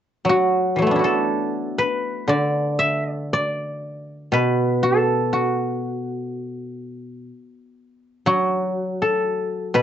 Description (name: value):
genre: chinese traditional, Chinese solo plucked strings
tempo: 60 BPM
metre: 4/4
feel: rubato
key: D gong mode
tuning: A4 = 438 Hz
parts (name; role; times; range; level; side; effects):
- guzheng; solo; 0.2-9.8 s; B2 to E5; -19 LUFS; equal; cassette tape
room: moderate small room ambience, RT60 0.5 s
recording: home recording on cassette, nothing above 7.9 kHz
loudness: -19 LUFS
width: side -9 dB against mid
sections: 0.3-9.8 A section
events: none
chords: none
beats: | 0.26 1.28 2.30 3.32 | 4.33 5.32 6.31 7.29 | 8.28 9.27